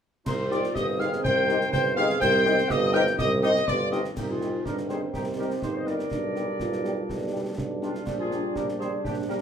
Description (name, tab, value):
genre	military-style march for wind band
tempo	123 BPM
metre	2/4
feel	straight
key	C minor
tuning	A4 = 441 Hz
part	dark trumpet section	melody	0.3-9.4 s	F4 to G5	-31 LUFS	right 1 dB	none
part	dark woodwind section	second line	0.3-9.4 s	D4 to C5	-32 LUFS	left 2 dB	none
part	mellow piccolo	second line	0.3-4.0 s	C6 to G6	-29 LUFS	left 3 dB	none
part	mellow trombone section	sustained chords	0.3-9.4 s	Eb3 to D4	-34 LUFS	right 3 dB	none
part	warm tuba	bass	0.3-9.4 s	G1 to C2	-28 LUFS	right 2 dB	none
part	concert snare drum, clash cymbals and concert bass drum	drums	0.3-9.4 s	none	-35 LUFS	equal	none
part	warm French horn section	accompaniment	0.5-9.4 s	G3 to G4	-31 LUFS	left 6 dB	none
part	mellow euphonium	second line	4.2-9.4 s	C4 to G4	-34 LUFS	right 3 dB	none
room	wet large studio reverb, RT60 0.9 s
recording	minimal, uncompressed stereo recording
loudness	-23 LUFS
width	side -8 dB against mid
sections	0.3-4.2 A section; 4.2-9.4 B section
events	none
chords	0.3 Cm; 6.1 G/B; 8.1 Gm/Bb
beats	| 0.27 0.75 | 1.24 1.73 | 2.21 2.70 | 3.19 3.68 | 4.16 4.65 | 5.14 5.63 | 6.12 6.60 | 7.09 7.58 | 8.07 8.55 | 9.04